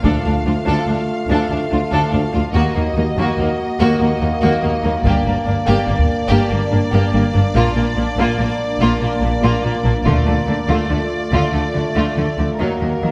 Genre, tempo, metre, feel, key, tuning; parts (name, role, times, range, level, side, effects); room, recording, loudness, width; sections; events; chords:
cinematic, epic orchestral film score; 96 BPM (dotted quarters); 12/8; straight; A4 = 442 Hz
warm symphonic violin section; melody; 0.0-13.1 s; Bb4 to F5; -29 LUFS; equal
rich studio violin section; second line; 0.0-13.1 s; A3 to A4; -27 LUFS; equal
rich symphonic viola section; accompaniment; 0.0-13.1 s; Gb3 to D4; -26 LUFS; equal
taiko ensemble; drums; 0.0-0.8, 5.0-6.2, 10.1-10.9 s; -23 LUFS; equal
warm French horn section; sustained chords; 0.1-13.1 s; A3 to Gb4; -25 LUFS; equal
rich studio double bass section; bass; 0.1-13.1 s; G1 to Eb2; -24 LUFS; equal
rich symphonic cello section; bass; 0.1-13.1 s; D2 to Eb3; -23 LUFS; equal
wet scoring stage reverb, RT60 1.5 s; -17 LUFS; mono
0.0-13.1 A section
build-up 0.0-13.1
0.0 Dm; 2.6 Ebm; 5.0 Gm; 7.6 Bb; 10.1 Dm; 12.6 Ebm